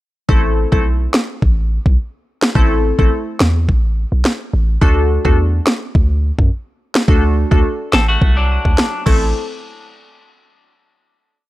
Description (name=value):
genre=dancehall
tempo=106 BPM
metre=4/4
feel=straight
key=A dorian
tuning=A4 = 438 Hz
part: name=glassy wavetable pluck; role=accompaniment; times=0.3-9.3 s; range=A3 to A4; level=-19 LUFS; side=left 1 dB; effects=chorus
part: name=warm 808-style bass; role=bass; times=0.3-9.3 s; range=A1 to F#2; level=-15 LUFS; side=equal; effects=none
part: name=island pop drum kit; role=drums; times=0.3-9.2 s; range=crash cymbal, kick drum, snare drum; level=-15 LUFS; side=equal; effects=none
part: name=clean electric guitar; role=arpeggios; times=7.9-9.0 s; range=F#3 to A4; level=-20 LUFS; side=left 2 dB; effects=wide subtle chorus, analog delay
room=digital ambience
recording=dry, gritty hardware recording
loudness=-13 LUFS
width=side -17 dB against mid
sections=0.3-9.3 verse; 9.3-11.5 final hit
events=none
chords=0.3 Am; 4.8 D; 9.1 Am; 9.3 N.C.